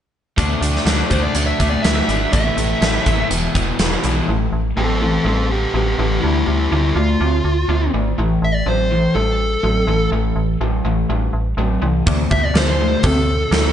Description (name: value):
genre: blues rock power trio and southern rock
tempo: 123 BPM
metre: 4/4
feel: straight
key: A minor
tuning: A4 = 439 Hz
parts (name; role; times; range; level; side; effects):
- raw garage guitar; riff; 0.4-13.7 s; E2 to D4; -20 LUFS; left 1 dB; overdrive
- metallic FM bass; bass; 0.4-13.7 s; E1 to D2; -20 LUFS; equal; none
- big rock drum kit; drums; 0.4-4.1, 12.1-13.6 s; hi-hat, kick drum, snare drum; -19 LUFS; equal; none
- dark smooth lead guitar; melody; 1.1-13.7 s; G3 to E5; -20 LUFS; equal; overdrive, slapback echo
room: moderate scoring stage reverb, RT60 1.7 s, studio reverb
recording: big arena sound, nothing above 10.3 kHz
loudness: -15 LUFS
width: side -10 dB against mid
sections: 0.4-4.3 A section; 4.3-13.7 B section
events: none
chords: 0.4 D5; 2.3 A5; 3.3 E5; 4.3 Am9; 6.2 Dm7; 8.2 A7(no3); 12.1 D5